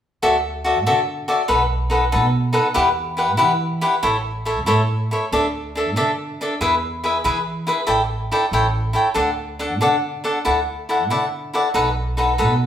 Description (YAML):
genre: mexican folk, mariachi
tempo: 94 BPM (dotted quarters)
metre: 6/8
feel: straight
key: D major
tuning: A4 = 440 Hz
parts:
  - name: cavaquinho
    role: accompaniment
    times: 0.2-12.5 s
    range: D4 to G5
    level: -18 LUFS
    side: left 1 dB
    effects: none
  - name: upright bass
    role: bass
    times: 0.2-12.7 s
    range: A1 to E3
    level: -24 LUFS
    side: right 1 dB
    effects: none
room: wet large studio reverb, RT60 1.1 s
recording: band playing live in one room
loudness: -17 LUFS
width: side -10 dB against mid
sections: 0.2-10.5 A section; 10.5-12.7 A section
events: none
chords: 0.2 Dadd9; 1.5 B7; 2.8 Emadd9; 4.0 A; 5.3 Dsus2; 6.6 E; 7.9 A7sus4; 8.5 A7; 9.2 D; 10.5 Dadd9; 11.8 B7